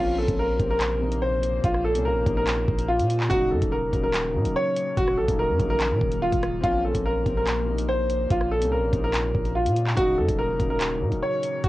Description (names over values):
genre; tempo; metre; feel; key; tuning
hip hop, drill; 144 BPM; 4/4; half-time; Bb minor; A4 = 439 Hz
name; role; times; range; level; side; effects
clear concert grand piano; melody; 0.0-11.7 s; F4 to Db5; -24 LUFS; equal; cassette tape
dark concert grand piano; accompaniment; 0.0-11.7 s; C3 to Eb4; -32 LUFS; left 2 dB; cassette tape
glassy FM pad; sustained chords; 0.1-11.7 s; Bb2 to C5; -36 LUFS; left 2 dB; ensemble chorus, built-in reverb, cassette tape
long sustained 808-style bass; bass; 0.0-11.7 s; Eb1 to Bb2; -27 LUFS; equal; none
drill drum kit; drums; 0.3-11.7 s; handclaps, hi-hat, kick drum, rim click; -28 LUFS; equal; vintage 12-bit sampler grit, cassette tape
room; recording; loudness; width
light reverb; home recording on cassette; -21 LUFS; side -17 dB against mid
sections
0.0-11.7 A section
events
none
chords
0.0 Bbmadd9; 3.3 Ebm7; 6.6 Bbmadd9; 10.0 Ebm7